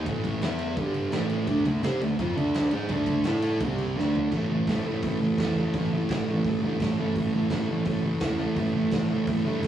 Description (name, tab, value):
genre	garage rock duo or trio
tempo	170 BPM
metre	4/4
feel	straight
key	unclear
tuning	A4 = 440 Hz
part	thick fuzz guitar	riff	0.0-9.7 s	G2 to C5	-25 LUFS	right 1 dB	distortion
part	fuzz fingered electric bass	bass	0.0-9.7 s	G1 to C3	-32 LUFS	right 1 dB	overdrive
part	raw garage drum kit	drums	0.1-9.7 s	crash cymbal, hi-hat, kick drum, ride cymbal, snare drum, toms	-31 LUFS	equal	none
room	moderate studio reverb, RT60 0.5 s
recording	rough rehearsal-room recording, small room ambience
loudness	-24 LUFS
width	side -10 dB against mid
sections	0.0-4.3 A section; 4.3-9.7 B section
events	drum fill 4.0-4.3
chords	0.4 E5; 0.8 G5; 1.1 A5; 1.5 D5; 3.2 A5; 3.6 C5; 4.0 D5; 4.3 A5